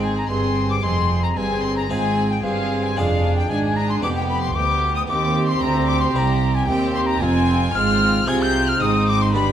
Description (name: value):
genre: classical, baroque-style concerto movement with solo episodes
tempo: 113 BPM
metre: 4/4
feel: straight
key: unclear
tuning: A4 = 440 Hz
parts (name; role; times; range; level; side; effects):
- mellow alto recorder; melody; 0.0-9.5 s; F5 to G6; -25 LUFS; left 2 dB; none
- rich chamber violin section; melody; 0.0-9.5 s; F5 to Ab6; -27 LUFS; left 5 dB; none
- rich chamber violin section; second line; 0.0-9.5 s; D4 to Ab4; -27 LUFS; left 1 dB; none
- dark chamber viola section; accompaniment; 0.0-9.5 s; G3 to D4; -25 LUFS; equal; none
- harpsichord; accompaniment; 0.0-9.5 s; C2 to Ab4; -29 LUFS; equal; none
- rich chamber cello section; bass; 0.0-9.5 s; C2 to C3; -24 LUFS; right 2 dB; none
- warm chamber double bass section; bass; 0.0-9.5 s; F1 to Eb2; -24 LUFS; right 3 dB; none
room: moderate recital hall reverb, RT60 1.4 s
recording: none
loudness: -17 LUFS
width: side -10 dB against mid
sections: 0.0-9.5 A section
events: none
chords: 0.0 Ab; 0.8 Fm; 3.0 Ddim/F; 4.0 G7/F; 5.1 Cm; 7.2 Fm